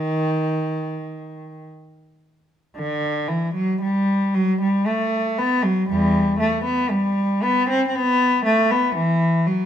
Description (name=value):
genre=classical, baroque-style suite movement for unaccompanied cello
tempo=54-59 BPM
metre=3/4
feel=rubato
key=unclear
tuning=A4 = 445 Hz
part: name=warm cello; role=solo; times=0.0-9.7 s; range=E2 to C4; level=-18 LUFS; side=equal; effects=none
room=moderate recital hall reverb, RT60 1.4 s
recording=close, detailed microphones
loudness=-18 LUFS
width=side -9 dB against mid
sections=0.0-2.8 A section; 2.8-9.7 B section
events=none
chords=none